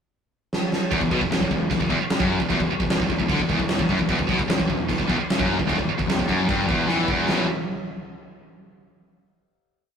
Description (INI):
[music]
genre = heavy metal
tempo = 151 BPM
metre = 4/4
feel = straight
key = E minor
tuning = A4 = 440 Hz
[part]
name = big rock drum kit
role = drums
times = 0.5-7.4 s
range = china cymbal, kick drum, snare drum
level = -24 LUFS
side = equal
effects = none
[part]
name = distorted electric guitar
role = riff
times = 0.9-7.5 s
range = E2 to E3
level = -25 LUFS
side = left 4 dB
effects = overdrive
[part]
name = heavy high-gain guitar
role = riff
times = 0.9-7.4 s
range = E2 to E3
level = -27 LUFS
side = right 6 dB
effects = distortion
[part]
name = fuzz picked electric bass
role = bass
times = 0.9-7.5 s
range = E1 to E2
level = -29 LUFS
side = equal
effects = overdrive
[sound]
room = light reverb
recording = rough rehearsal-room recording, tube saturation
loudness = -20 LUFS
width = side -7 dB against mid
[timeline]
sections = 0.0-0.9 pickup bar; 0.9-7.3 riff; 7.3-8.9 final chord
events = drum fill 0.5-0.9, 6.9-7.3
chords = 0.0 N.C.; 7.3 E5